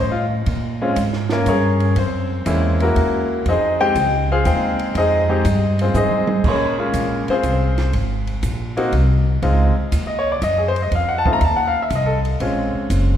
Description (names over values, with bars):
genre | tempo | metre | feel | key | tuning
jazz piano trio | 121 BPM | 3/4 | swing 69% on 8ths | F minor, Bb minor from 6.4 s | A4 = 440 Hz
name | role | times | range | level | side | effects
clear baby grand piano | melody | 0.0-13.2 s | Ab3 to Bb5 | -19 LUFS | left 1 dB | none
upright bass | bass | 0.0-13.2 s | Gb1 to Bb2 | -19 LUFS | equal | none
compact cocktail drum kit | drums | 0.5-13.1 s | crash cymbal, hi-hat, kick drum, ride cymbal, snare drum, toms | -28 LUFS | right 2 dB | none
room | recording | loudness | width
moderate concert hall reverb, RT60 2.2 s | recorded in a church or concert hall | -16 LUFS | side -10 dB against mid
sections
0.0-6.4 A section; 6.4-13.2 A section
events
grand piano solo 0.0-13.2; drum fill 5.9-6.4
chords
0.5 Bbm7; 2.0 Gb9; 3.5 Fm7; 6.4 Bbm9; 7.9 Abadd9; 9.4 Dbmaj9; 10.9 F7; 12.4 Bbm7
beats
| 0.47 0.97 1.47 | 1.97 2.46 2.96 | 3.46 3.96 4.46 | 4.95 5.45 5.95 | 6.44 6.94 7.44 | 7.93 8.43 8.93 | 9.43 9.92 10.42 | 10.91 11.41 11.91 | 12.40 12.90